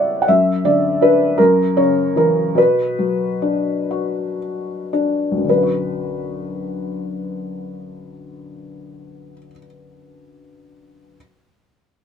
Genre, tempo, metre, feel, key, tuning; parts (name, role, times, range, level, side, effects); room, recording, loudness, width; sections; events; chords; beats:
classical, lyrical solo piano; 36-56 BPM (dotted quarters); 6/8; rubato; B minor; A4 = 439 Hz
felt-muted upright piano; solo; 0.0-11.2 s; B1 to G5; -16 LUFS; left 1 dB
moderate small room reverb, RT60 0.5 s; minimal, uncompressed stereo recording; -16 LUFS; side -7 dB against mid
0.0-5.5 A section; 5.5-8.7 B section
slowing down 0.3-5.5
0.3 Bmadd11/F#; 1.4 F#5; 2.6 Bm
| 0.28 1.39 | 2.57 3.92 | 5.48 7.07